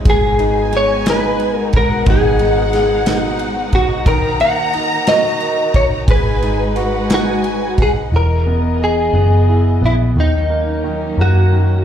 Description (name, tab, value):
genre	six-eight pop ballad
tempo	59 BPM (dotted quarters)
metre	6/8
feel	straight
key	G# minor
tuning	A4 = 441 Hz
part	clear grand piano	accompaniment	0.0-11.8 s	D#3 to D#5	-22 LUFS	equal	slapback echo
part	direct-recorded clean electric guitar	melody	0.1-11.8 s	D#4 to F#5	-17 LUFS	equal	ensemble chorus, slapback echo
part	warm studio violin section	second line	0.1-8.1 s	F#5 to A#5	-24 LUFS	left 2 dB	slapback echo
part	warm symphonic string section	sustained chords	0.1-11.8 s	D#3 to D#5	-25 LUFS	equal	none
part	vintage muted fingered electric bass	bass	0.1-11.8 s	E1 to F#2	-17 LUFS	equal	none
part	modern studio drum kit	drums	0.1-7.9 s	kick drum, ride cymbal, snare drum	-19 LUFS	equal	none
room	light reverb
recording	live gig heard through the venue's PA, club reverb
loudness	-12 LUFS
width	side -9 dB against mid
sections	0.0-8.1 A section; 8.1-11.8 B section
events	none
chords	0.0 G#m7; 4.1 D#m; 6.1 G#m7; 8.1 Emaj7; 10.2 F#6